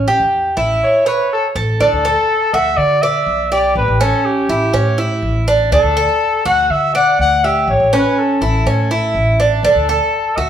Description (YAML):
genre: latin, Cuban son and guajira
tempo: 122 BPM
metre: 4/4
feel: straight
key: D major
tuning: A4 = 439 Hz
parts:
  - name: Cuban tres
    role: arpeggios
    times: 0.0-10.5 s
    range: C#4 to D5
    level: -16 LUFS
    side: right 2 dB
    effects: none
  - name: upright bass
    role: bass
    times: 0.0-10.5 s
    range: A1 to D3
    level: -19 LUFS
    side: equal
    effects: none
  - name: warm trumpet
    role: melody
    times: 0.8-10.5 s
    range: G4 to F#5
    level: -16 LUFS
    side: left 2 dB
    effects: none
room: moderate large studio reverb, RT60 1.1 s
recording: band playing live in one room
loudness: -12 LUFS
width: side -9 dB against mid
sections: 0.0-1.8 A section; 1.8-10.5 B section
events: trumpet solo 0.0-1.8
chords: 0.0 A7; 1.8 Dadd9; 3.8 A7; 5.7 D; 7.7 A7; 9.6 D